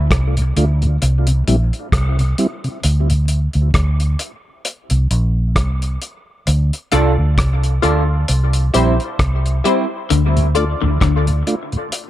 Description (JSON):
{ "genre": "dub reggae", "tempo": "66 BPM", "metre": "4/4", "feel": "swing 56% on 16ths", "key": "D minor", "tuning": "A4 = 440 Hz", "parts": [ { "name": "vintage muted fingered electric bass", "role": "bass", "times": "0.0-11.4 s", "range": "Bb1 to D2", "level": "-15 LUFS", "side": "equal", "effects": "none" }, { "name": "cloth-damped thuddy drum kit", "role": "drums", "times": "0.1-12.1 s", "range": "hi-hat, kick drum, rim click", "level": "-20 LUFS", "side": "equal", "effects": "none" }, { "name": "mellow tonewheel organ", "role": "accompaniment", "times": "0.4-3.1, 10.4-11.8 s", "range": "D2 to F4", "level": "-22 LUFS", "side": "equal", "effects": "slow rotary speaker, dub echo" }, { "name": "electric guitar through a small old amp", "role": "accompaniment", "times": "6.9-9.8 s", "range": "G3 to A4", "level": "-23 LUFS", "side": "right 4 dB", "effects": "dub echo" }, { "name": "filtered dub chord stab", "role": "stabs", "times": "6.9-10.8 s", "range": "E4 to D5", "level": "-22 LUFS", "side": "left 5 dB", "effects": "phaser, dub echo" }, { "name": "electric guitar through a small old amp", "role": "riff", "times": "10.1-11.3 s", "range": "D3", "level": "-23 LUFS", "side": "left 10 dB", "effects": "dub echo" } ], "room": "light reverb", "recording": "none", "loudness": "-14 LUFS", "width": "side -13 dB against mid", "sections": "0.0-12.1 A section", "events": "break 0.0-10.1", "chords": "0.0 D5; 1.0 N.C.; 2.8 D5; 4.6 Bbsus2; 6.5 Dm; 8.3 C; 10.1 Dm" }